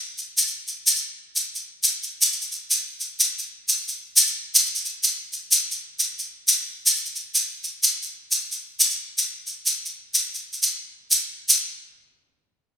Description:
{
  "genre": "west african traditional",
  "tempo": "104 BPM (dotted quarters)",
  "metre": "12/8",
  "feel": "straight",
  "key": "none",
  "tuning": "none",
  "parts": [
    { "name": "tube shaker", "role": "percussion", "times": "0.2-11.7 s", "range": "none", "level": "-19 LUFS", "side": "equal", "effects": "none" }
  ],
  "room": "light reverb",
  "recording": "minimal, uncompressed stereo recording",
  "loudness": "-20 LUFS",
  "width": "side -8 dB against mid",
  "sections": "0.0-2.2 A section; 2.2-11.5 A section; 11.5-12.8 B section",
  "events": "none",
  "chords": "none",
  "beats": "0.47 1.06 1.64 | 2.22 2.81 3.39 3.97 | 4.55 5.13 5.71 6.29 | 6.87 7.45 8.02 8.60 | 9.18 9.76 10.34 10.91 | 11.49"
}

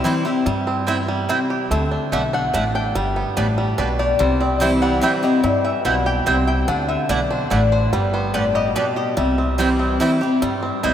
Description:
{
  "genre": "bluegrass",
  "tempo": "145 BPM",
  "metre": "3/4",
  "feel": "straight",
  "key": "C lydian",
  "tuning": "A4 = 435 Hz",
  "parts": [
    { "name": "lap resonator guitar", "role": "second line", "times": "0.0-10.9 s", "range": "B4 to G5", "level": "-24 LUFS", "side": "left 4 dB", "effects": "none" },
    { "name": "picked steel-string acoustic guitar", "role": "accompaniment", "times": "0.0-10.9 s", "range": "G2 to E4", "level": "-22 LUFS", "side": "left 1 dB", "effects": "none" },
    { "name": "bluegrass banjo", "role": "arpeggios", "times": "0.0-10.9 s", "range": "D3 to G4", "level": "-24 LUFS", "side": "right 2 dB", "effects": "none" },
    { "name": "mandolin", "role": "stabs", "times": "0.0-10.9 s", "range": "A3 to A5", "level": "-25 LUFS", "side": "right 3 dB", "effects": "none" },
    { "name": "upright bass", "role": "bass", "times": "0.5-10.9 s", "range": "G1 to G2", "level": "-24 LUFS", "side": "equal", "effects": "none" }
  ],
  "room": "wet cathedral reverb, RT60 6.2 s",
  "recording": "in a vast, echoing space",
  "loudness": "-17 LUFS",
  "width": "side -10 dB against mid",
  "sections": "0.0-10.9 A section",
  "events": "resonator guitar played with a steel bar solo 0.0-10.9",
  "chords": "0.0 C; 1.7 Dadd9; 3.0 Gadd9; 4.2 C; 6.7 Dadd9; 7.9 Gadd9; 9.2 C",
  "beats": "0.05 | 0.47 0.88 1.29 | 1.71 2.12 2.54 | 2.95 3.37 3.78 | 4.20 4.61 5.03 | 5.44 5.86 6.27 | 6.69 7.10 7.52 | 7.93 8.35 8.76 | 9.18 9.59 10.01 | 10.42 10.84"
}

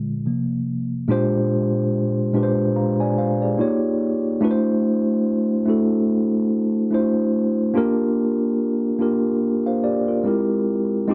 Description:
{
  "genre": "R&B",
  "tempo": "72 BPM",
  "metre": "4/4",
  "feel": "swing 58% on 16ths",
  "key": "unclear",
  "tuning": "A4 = 440 Hz",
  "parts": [
    { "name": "mellow tine electric piano", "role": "solo", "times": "0.0-11.1 s", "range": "Bb2 to Bb5", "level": "-21 LUFS", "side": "equal", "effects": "none" }
  ],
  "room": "light reverb",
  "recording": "dry, close 1970s-style studio recording",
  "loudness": "-21 LUFS",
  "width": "mono",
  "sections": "0.0-1.1 A section; 1.1-11.1 B section",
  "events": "tine electric piano solo 0.0-1.1",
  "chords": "0.2 C7sus4; 1.1 Bb13; 3.6 Eb9; 4.4 D7; 7.7 Gm7; 10.2 C7b13",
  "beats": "0.25 | 1.08 1.91 2.75 3.58 | 4.41 5.25 6.08 6.91 | 7.75 8.58 9.41 10.25 | 11.08"
}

